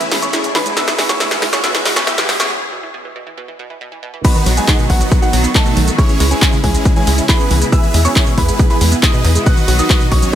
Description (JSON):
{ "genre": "uplifting trance", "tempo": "138 BPM", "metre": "4/4", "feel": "straight", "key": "unclear", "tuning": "A4 = 440 Hz", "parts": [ { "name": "supersaw chords", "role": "melody", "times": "0.0-10.3 s", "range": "F#3 to F#5", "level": "-20 LUFS", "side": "right 1 dB", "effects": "phaser, sidechain pumping, dub echo" }, { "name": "clear grand piano", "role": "second line", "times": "0.0-10.3 s", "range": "F#5 to F#6", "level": "-24 LUFS", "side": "equal", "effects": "sidechain pumping, dub echo" }, { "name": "clear studio string section", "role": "sustained chords", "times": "0.0-10.3 s", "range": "B2 to F#4", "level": "-25 LUFS", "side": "left 1 dB", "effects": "sidechain pumping" }, { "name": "wide unison pluck", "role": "arpeggios", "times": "0.0-10.3 s", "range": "B2 to E4", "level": "-24 LUFS", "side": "right 4 dB", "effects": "sidechain pumping, dub echo" }, { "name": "punchy analog drum machine", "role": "drums", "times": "0.0-10.3 s", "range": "crash cymbal, handclaps, hi-hat, shaker, snare drum", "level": "-18 LUFS", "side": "equal", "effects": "high-pass filter on snare, high-pass filter on hats, high-pass filter on perc, high-pass filter on cymbals, high-pass filter on room" }, { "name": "riser", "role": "sound effects", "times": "0.0-2.5 s", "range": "none", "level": "-24 LUFS", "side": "equal", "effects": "none" }, { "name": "tight sequencer bass", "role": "bass", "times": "0.1-10.3 s", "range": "F#1 to E2", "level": "-15 LUFS", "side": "equal", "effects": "sidechain pumping, high-pass filter" }, { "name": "electronic kick drum", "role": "drums", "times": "4.2-10.2 s", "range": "none", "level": "-13 LUFS", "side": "equal", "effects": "overdrive" } ], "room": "light reverb", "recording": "high-pass filter", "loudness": "-11 LUFS", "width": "side -10 dB against mid", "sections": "0.0-4.2 A section; 4.2-10.3 B section", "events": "build-up 0.0-4.2; drum fill 0.0-2.5; riser 0.0-2.5; filter sweep on synth pluck 0.0-4.2; break 2.5-4.2; drop 4.2-10.3", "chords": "0.0 A; 0.8 F#madd9; 2.5 Bsus4; 4.2 B; 6.0 C#m; 7.7 E; 9.5 B", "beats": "0.33 | 0.77 1.20 1.64 2.07 | 2.51 2.94 3.38 3.81 | 4.25 4.68 5.12 5.55 | 5.99 6.42 6.86 7.29 | 7.72 8.16 8.59 9.03 | 9.46 9.90 10.33" }